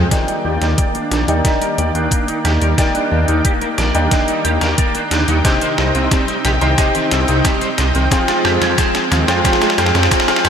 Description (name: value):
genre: synthwave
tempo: 90 BPM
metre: 4/4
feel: straight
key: Eb major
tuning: A4 = 445 Hz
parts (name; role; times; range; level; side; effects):
- lush unison pad; sustained chords; 0.0-10.5 s; C3 to G5; -22 LUFS; equal; chorus, sidechain pumping
- overdriven electric guitar; riff; 0.0-10.5 s; C3 to C4; -25 LUFS; equal; ensemble chorus, low-pass filter, ping-pong delay
- wide detuned saw bass; bass; 0.0-10.5 s; Bb1 to F2; -17 LUFS; equal; chorus, sidechain pumping
- clean electric guitar; arpeggios; 0.1-10.5 s; C4 to Eb5; -21 LUFS; right 1 dB; ensemble chorus, low-pass filter, ping-pong delay
- bright baby grand piano; stabs; 0.1-10.5 s; Eb4 to G5; -20 LUFS; left 1 dB; low-pass filter, ping-pong delay
- detuned 8-bit digital drum machine; drums; 0.1-10.5 s; hi-hat, snare drum; -21 LUFS; equal; overdrive, high-pass filter on hats, high-pass filter on snare, high-pass filter on toms, high-pass filter on room, gated reverb
- electronic kick drum; drums; 0.1-10.2 s; none; -18 LUFS; equal; overdrive
room: wet lush hall reverb, RT60 2.4 s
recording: bright 1980s-style digital production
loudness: -13 LUFS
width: side -7 dB against mid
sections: 0.1-10.5 A section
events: drum fill 0.1-10.5; filter sweep on grand piano 0.1-10.5; filter sweep on overdriven electric guitar 0.1-10.5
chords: 0.1 Ebmaj7; 5.4 Cm; 8.1 Fmadd9